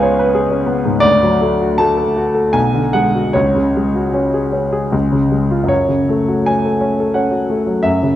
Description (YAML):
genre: classical, romantic character piece for solo piano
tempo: 73-90 BPM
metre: 3/4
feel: rubato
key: F# minor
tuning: A4 = 439 Hz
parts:
  - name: clear grand piano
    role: solo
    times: 0.0-8.2 s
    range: B1 to A5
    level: -13 LUFS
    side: equal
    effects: none
room: wet recital hall reverb, RT60 1.6 s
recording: dark, warm production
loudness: -13 LUFS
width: side -12 dB against mid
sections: 0.0-5.7 A section; 5.7-8.2 A section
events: none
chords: 0.0 C#7; 1.1 D; 2.6 G#m7b5/B; 3.4 C#sus4; 4.9 C#; 5.7 F#m